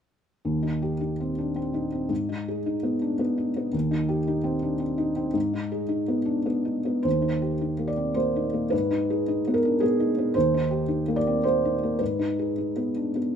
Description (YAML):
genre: neoclassical minimalist piano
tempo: 109 BPM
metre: 3/4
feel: uneven beats, rubato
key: Eb major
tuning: A4 = 440 Hz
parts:
  - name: felt-muted upright piano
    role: solo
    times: 0.4-13.4 s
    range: Eb2 to D5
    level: -23 LUFS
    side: equal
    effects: none
room: moderate stone room reverb, RT60 1.1 s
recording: minimal, uncompressed stereo recording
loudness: -23 LUFS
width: side -8 dB against mid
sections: 0.5-7.0 A section; 7.0-13.4 B section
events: none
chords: 0.5 Eb6; 2.1 Abm; 3.7 Eb6; 5.3 Abm; 7.0 Eb6; 8.7 Abm; 10.4 Eb6; 12.0 Abm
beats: | 0.45 1.01 1.56 | 2.10 2.65 3.19 | 3.73 4.26 4.80 | 5.35 5.90 6.46 | 7.05 7.61 8.17 | 8.72 9.28 9.82 | 10.35 10.89 11.44 | 12.00 12.58 13.16